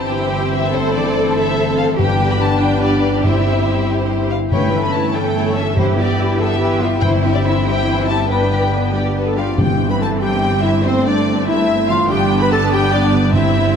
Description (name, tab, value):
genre	cinematic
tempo	95 BPM (dotted quarters)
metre	6/8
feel	straight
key	G major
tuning	A4 = 439 Hz
part	rich symphonic violin section	melody	0.0-13.8 s	C5 to B5	-24 LUFS	left 3 dB	none
part	clear symphonic violin section	second line	0.0-13.8 s	E4 to B5	-23 LUFS	left 2 dB	none
part	rich symphonic viola section	accompaniment	0.0-13.8 s	E3 to E4	-23 LUFS	right 2 dB	none
part	mellow French horn section	sustained chords	0.0-9.3 s	E3 to E4	-23 LUFS	left 2 dB	none
part	concert harp	arpeggios	0.0-13.8 s	G2 to A5	-24 LUFS	left 8 dB	none
part	clear symphonic double bass section	bass	0.0-13.8 s	G1	-22 LUFS	right 3 dB	none
part	warm symphonic cello section	bass	0.1-13.8 s	G2 to B4	-22 LUFS	right 2 dB	none
part	timpani	percussion	2.0-10.2, 13.3-13.8 s	G2	-22 LUFS	right 1 dB	none
part	dark clarinet	second line	9.4-13.8 s	C4 to B4	-19 LUFS	left 1 dB	none
room	wet scoring stage reverb, RT60 1.8 s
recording	none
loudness	-14 LUFS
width	side -7 dB against mid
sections	0.0-9.6 A section; 9.6-13.8 A section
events	none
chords	0.0 C/G; 0.7 Am/G; 2.0 G; 3.2 C/G; 4.5 A/G; 5.8 Em/G; 7.0 C/G; 8.3 G; 9.6 C/G; 10.8 Am/G; 12.1 G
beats	0.11 | 0.74 1.36 | 1.98 2.61 | 3.24 3.88 | 4.51 5.15 | 5.78 6.40 | 7.02 7.65 | 8.29 8.94 | 9.58 10.21 | 10.84 11.47 | 12.10 12.72 | 13.35